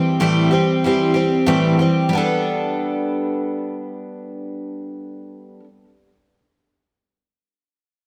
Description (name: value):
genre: rock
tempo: 94 BPM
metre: 4/4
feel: straight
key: G major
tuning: A4 = 439 Hz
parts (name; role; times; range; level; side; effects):
- picked twelve-string acoustic guitar; solo; 0.0-5.7 s; A2 to A4; -20 LUFS; equal; analog delay
room: light reverb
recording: none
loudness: -18 LUFS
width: mono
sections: 0.0-2.1 A section; 2.1-4.6 B section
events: none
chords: 0.0 Am7; 2.1 Gadd9